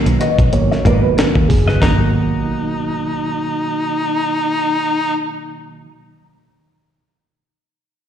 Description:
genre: funk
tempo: 93 BPM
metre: 4/4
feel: swing 56% on 16ths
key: G# minor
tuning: A4 = 440 Hz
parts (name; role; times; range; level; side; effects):
- reed electric piano; stabs; 0.0-5.9 s; B2 to D#5; -20 LUFS; right 5 dB; medium tremolo, slapback echo
- clean electric guitar; accompaniment; 0.1-5.9 s; F#4 to D#5; -26 LUFS; left 6 dB; wah, phaser, slapback echo
- vintage muted picked electric bass; bass; 0.1-5.9 s; F#1 to G#2; -18 LUFS; left 1 dB; none
- breakbeat sampler-style drum kit; drums; 0.1-2.0 s; hi-hat, kick drum, snare drum; -17 LUFS; left 1 dB; slapback echo
- bright baritone saxophone; second line; 1.8-5.2 s; D#4; -19 LUFS; left 1 dB; slapback echo
room: light reverb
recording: live gig heard through the venue's PA, recital hall reverb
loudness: -14 LUFS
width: side -9 dB against mid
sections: 0.0-1.8 A section; 1.8-4.4 B section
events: reed electric piano fill 0.0-1.8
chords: 0.0 G#m7

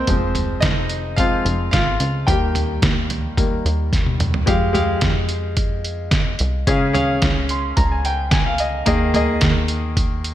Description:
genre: piano-driven pop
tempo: 109 BPM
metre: 4/4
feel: straight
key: unclear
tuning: A4 = 437 Hz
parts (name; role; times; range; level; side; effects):
- clear concert grand piano; accompaniment; 0.0-10.3 s; Db3 to C6; -21 LUFS; left 2 dB; none
- plucky analog bass; bass; 0.0-10.3 s; F1 to F2; -23 LUFS; equal; none
- trip hop sampler-style drum kit; drums; 0.1-10.3 s; hi-hat, kick drum, snare drum, toms; -20 LUFS; right 1 dB; gated reverb
room: light reverb, digital ambience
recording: bright 1980s-style digital production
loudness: -16 LUFS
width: side -12 dB against mid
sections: 0.0-4.5 A section; 4.5-10.3 B section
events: grand piano solo 0.0-4.5; drum fill 3.9-4.5; grand piano fill 7.2-8.9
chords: 0.1 Fm; 2.3 Eb; 4.5 Fmadd9; 6.7 Db; 8.9 Ebsus4

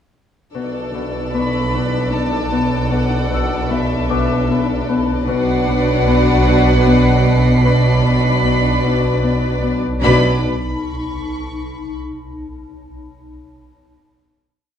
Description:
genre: cinematic, suspense film score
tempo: 76 BPM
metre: 3/4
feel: straight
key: B minor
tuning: A4 = 445 Hz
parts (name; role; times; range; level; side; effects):
- Celtic harp; riff; 0.5-12.4 s; B2 to B3; -21 LUFS; left 4 dB; none
- rich studio double bass section; bass; 0.5-10.5 s; B1; -21 LUFS; right 3 dB; none
- dark studio violin section; second line; 0.6-10.5 s; A4 to D5; -23 LUFS; right 2 dB; none
- warm studio viola section; accompaniment; 0.6-10.5 s; E3 to D4; -22 LUFS; left 2 dB; none
- dark studio cello section; bass; 0.6-10.5 s; B2; -20 LUFS; right 1 dB; none
- swarming drone; drone; 1.3-10.5 s; B1; -25 LUFS; equal; built-in reverb
- warm studio violin section; texture; 0.6-12.0 s; B5 to C7; -33 LUFS; right 2 dB; none
- warm studio violin section; melody; 1.3-10.5 s; E5 to B5; -24 LUFS; left 1 dB; none
- concert harp; texture; 1.3-10.1 s; A5 to E6; -31 LUFS; left 6 dB; none
room: wet stone room reverb, RT60 1.3 s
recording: dark, warm production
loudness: -14 LUFS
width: side -9 dB against mid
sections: 0.6-10.0 A section; 10.0-12.4 final chord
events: none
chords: 0.6 Asus4/B; 5.3 Bm

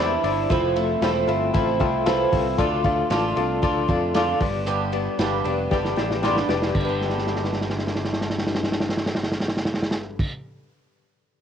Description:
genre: jangly indie pop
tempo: 115 BPM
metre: 4/4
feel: straight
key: G mixolydian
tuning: A4 = 440 Hz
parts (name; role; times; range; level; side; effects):
- picked twelve-string acoustic guitar; accompaniment; 0.0-10.4 s; G2 to F4; -26 LUFS; right 10 dB; cassette tape
- reed electric piano; accompaniment; 0.0-11.4 s; E4 to G5; -26 LUFS; left 8 dB; fast tremolo, cassette tape, plate reverb
- electric guitar through a small old amp; arpeggios; 0.0-10.4 s; G2 to G4; -29 LUFS; left 8 dB; analog chorus, cassette tape, analog delay, plate reverb
- picked electric bass; bass; 0.0-10.3 s; E1 to F2; -30 LUFS; right 1 dB; none
- vintage drum kit; drums; 0.2-10.3 s; crash cymbal, hi-hat, kick drum, ride cymbal, snare drum; -25 LUFS; right 1 dB; cassette tape
room: moderate booth ambience, RT60 0.2 s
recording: home recording on cassette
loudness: -20 LUFS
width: side -8 dB against mid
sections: 0.0-6.8 A section; 6.8-10.9 B section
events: drum fill 5.7-6.8, 7.0-10.2; reed electric piano fill 5.7-6.8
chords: 0.0 Cadd9; 0.5 Fmaj7; 2.6 Dm; 4.4 G

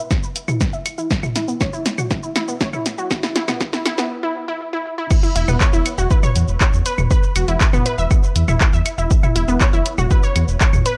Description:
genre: melodic techno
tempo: 120 BPM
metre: 4/4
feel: straight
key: unclear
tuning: A4 = 439 Hz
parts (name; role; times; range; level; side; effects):
- unison pluck; arpeggios; 0.0-10.9 s; B3 to E6; -26 LUFS; equal; sidechain pumping, tape echo
- electronic kick drum; drums; 0.1-10.7 s; none; -19 LUFS; equal; small room ambience
- punchy analog drum machine; drums; 0.1-11.0 s; claves, crash cymbal, handclaps, hi-hat, shaker, snare drum, toms; -24 LUFS; equal; small room ambience
- swelling detuned saw bass; bass; 5.4-10.8 s; E1 to E2; -21 LUFS; equal; sidechain pumping
room: little or no reverb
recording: dry, gritty hardware recording, cassette tape, high-pass filter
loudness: -18 LUFS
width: mono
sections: 0.0-5.1 A section; 5.1-11.0 B section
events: build-up 0.0-5.1; drum fill 0.0-4.1; filter sweep on synth pluck 0.0-5.1; break 4.1-5.1; drop 5.1-11.0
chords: 0.0 E5

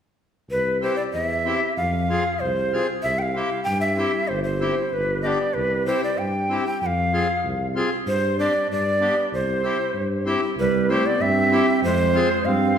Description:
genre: alpine folk, alpine dance band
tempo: 95 BPM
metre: 2/4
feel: straight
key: C major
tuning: A4 = 440 Hz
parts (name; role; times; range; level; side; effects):
- breathy bright shakuhachi; melody; 0.5-12.8 s; B4 to G5; -23 LUFS; right 1 dB; none
- mellow tuba; bass; 0.5-12.8 s; G1 to G2; -26 LUFS; equal; none
- accordion; accompaniment; 0.8-12.8 s; B3 to Ab4; -26 LUFS; left 3 dB; none
- warm clarinet; second line; 10.6-12.8 s; G3 to C4; -23 LUFS; right 4 dB; none
room: wet recital hall reverb, RT60 1.4 s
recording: heard from further back in the room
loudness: -20 LUFS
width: side -8 dB against mid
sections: 0.5-10.6 A section; 10.6-12.8 A section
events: none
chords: 0.5 C; 1.8 Fm; 3.0 C; 4.3 C/G; 4.9 G; 5.6 C; 6.8 Fm; 8.1 Gsus4; 8.7 G; 9.3 C; 11.8 Fm

